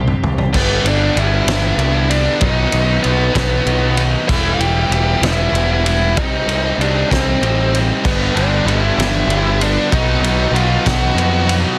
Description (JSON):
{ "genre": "quiet-loud alternative rock", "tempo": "64 BPM (dotted quarters)", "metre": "6/8", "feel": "straight", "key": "unclear", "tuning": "A4 = 444 Hz", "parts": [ { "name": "twelve-string electric guitar", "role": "arpeggios", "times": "0.0-0.5 s", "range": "C3 to G4", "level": "-29 LUFS", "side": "equal", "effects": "analog chorus, tape echo" }, { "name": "growling picked electric bass", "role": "bass", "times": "0.0-11.6 s", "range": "E1 to F2", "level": "-20 LUFS", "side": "equal", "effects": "overdrive" }, { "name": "loose indie drum kit", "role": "drums", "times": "0.1-11.6 s", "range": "crash cymbal, kick drum, ride cymbal, snare drum, toms", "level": "-23 LUFS", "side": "equal", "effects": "none" }, { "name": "crunchy overdriven guitar", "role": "riff", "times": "0.5-11.8 s", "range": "G2 to E4", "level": "-24 LUFS", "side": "equal", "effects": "none" }, { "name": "tight distorted guitar", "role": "riff", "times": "0.5-11.8 s", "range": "G2 to E4", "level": "-24 LUFS", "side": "equal", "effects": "distortion" }, { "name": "nasal lead guitar with a parked wah", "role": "melody", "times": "0.6-11.5 s", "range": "B3 to G5", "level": "-22 LUFS", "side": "equal", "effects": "overdrive, tape echo" }, { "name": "biting overdriven guitar", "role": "riff", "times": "8.0-11.8 s", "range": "G2 to B3", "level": "-26 LUFS", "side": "equal", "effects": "spring reverb" } ], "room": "light reverb, small room ambience", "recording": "dense, heavily limited modern master", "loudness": "-15 LUFS", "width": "mono", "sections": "0.5-11.8 A section", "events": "drum fill 0.0-0.5", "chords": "0.0 Cm; 0.5 G; 2.4 B; 4.3 Em; 6.2 Cm; 8.0 G; 9.9 B" }